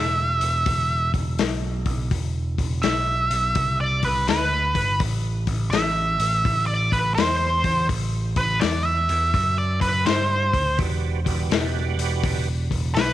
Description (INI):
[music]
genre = blues rock power trio and southern rock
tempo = 83 BPM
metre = 4/4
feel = swing 65% on 8ths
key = E minor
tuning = A4 = 440 Hz
[part]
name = octave-fuzz lead guitar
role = melody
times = 0.0-13.1 s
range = B4 to E5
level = -23 LUFS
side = right 1 dB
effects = wah, distortion
[part]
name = overdriven picked electric bass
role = bass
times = 0.0-13.1 s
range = E1 to G2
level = -24 LUFS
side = right 1 dB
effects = none
[part]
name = vintage drum kit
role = drums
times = 0.4-13.1 s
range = hi-hat, kick drum, snare drum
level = -26 LUFS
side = left 4 dB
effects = none
[part]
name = overdriven tonewheel organ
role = sustained chords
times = 10.8-12.5 s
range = F#4 to D5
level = -30 LUFS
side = right 12 dB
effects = slow rotary speaker, chorus vibrato
[sound]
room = light reverb, small room ambience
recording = 1960s-style stereo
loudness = -20 LUFS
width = side -13 dB against mid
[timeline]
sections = 0.0-13.1 A section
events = lead electric guitar solo 0.0-13.1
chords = 0.0 E5; 5.0 Am; 10.8 Em9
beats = 0.66 1.38 | 2.11 2.83 3.55 4.28 | 5.00 5.72 6.45 7.17 | 7.89 8.62 9.34 10.06 | 10.79 11.51 12.23 12.96